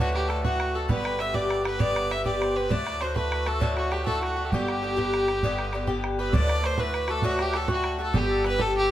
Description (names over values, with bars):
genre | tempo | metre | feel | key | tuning
celtic folk, Celtic slide | 132 BPM (dotted quarters) | 12/8 | straight | G major | A4 = 440 Hz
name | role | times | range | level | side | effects
rich fiddle | melody | 0.0-8.9 s | F#4 to E5 | -29 LUFS | right 1 dB | plate reverb
accordion | second line | 0.0-8.9 s | F#4 to E5 | -36 LUFS | left 2 dB | none
hammered dulcimer | second line | 0.0-8.9 s | F#4 to E5 | -35 LUFS | right 4 dB | none
Irish bouzouki | accompaniment | 0.0-8.9 s | G2 to G4 | -28 LUFS | left 2 dB | none
upright bass | bass | 0.0-8.9 s | G1 to D2 | -30 LUFS | equal | none
bodhran | percussion | 0.2-8.7 s | none | -30 LUFS | right 2 dB | none
room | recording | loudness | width
moderate small room ambience, RT60 0.5 s | none | -23 LUFS | side -12 dB against mid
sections
0.0-6.3 A section; 6.3-8.9 A section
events
none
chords
0.0 D; 0.9 G; 2.7 D; 4.5 G; 6.3 D; 8.1 G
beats
0.44 | 0.89 1.34 1.80 2.25 | 2.71 3.16 3.61 4.07 | 4.52 4.97 5.42 5.88 | 6.33 6.78 7.24 7.69 | 8.14 8.59